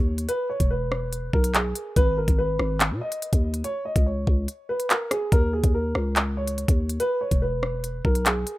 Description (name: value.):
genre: hip hop, drill.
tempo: 143 BPM.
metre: 4/4.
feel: half-time.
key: unclear.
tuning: A4 = 440 Hz.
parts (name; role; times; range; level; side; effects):
dark concert grand piano; melody; 0.0-8.6 s; G#4 to Eb5; -28 LUFS; equal; none.
growling 808-style bass; bass; 0.0-8.5 s; E1 to Cb3; -26 LUFS; equal; none.
drill drum kit; drums; 0.2-8.6 s; handclaps, hi-hat, kick drum, rim click; -22 LUFS; equal; none.
room: little or no reverb.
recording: rough home demo mix.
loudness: -22 LUFS.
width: side -18 dB against mid.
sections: 0.0-8.6 A section.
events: kick muted 4.5-5.3.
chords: 0.3 E; 2.0 Abm; 3.6 N.C.; 5.3 Eb5; 7.0 E.